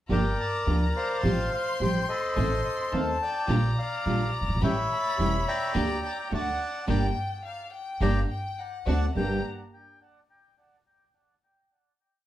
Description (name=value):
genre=tango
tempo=106 BPM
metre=4/4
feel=rubato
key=G minor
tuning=A4 = 440 Hz
part: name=bandoneon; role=melody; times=0.1-9.4 s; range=A4 to B5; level=-30 LUFS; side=equal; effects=none
part: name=rich violin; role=second line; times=0.1-9.4 s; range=F5 to C6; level=-34 LUFS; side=left 3 dB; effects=none
part: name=nylon-string guitar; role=accompaniment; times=0.1-9.4 s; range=G2 to G4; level=-30 LUFS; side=right 1 dB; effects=none
part: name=rich studio string section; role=stabs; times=0.1-9.4 s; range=A3 to A4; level=-35 LUFS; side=right 1 dB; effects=none
part: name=upright bass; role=bass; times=0.1-9.4 s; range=E1 to Eb2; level=-28 LUFS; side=equal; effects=none
room=wet studio reverb, RT60 0.5 s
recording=heard from further back in the room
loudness=-25 LUFS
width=side -13 dB against mid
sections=0.1-9.2 A section; 9.2-11.4 final chord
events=band accent 6.9-9.2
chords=0.1 Gm7; 1.2 Fadd9/A; 2.4 Adim; 3.5 Gm7/Bb; 4.6 A7; 5.7 Gm/D; 6.3 D; 6.9 Gm; 8.6 D7; 9.2 Gm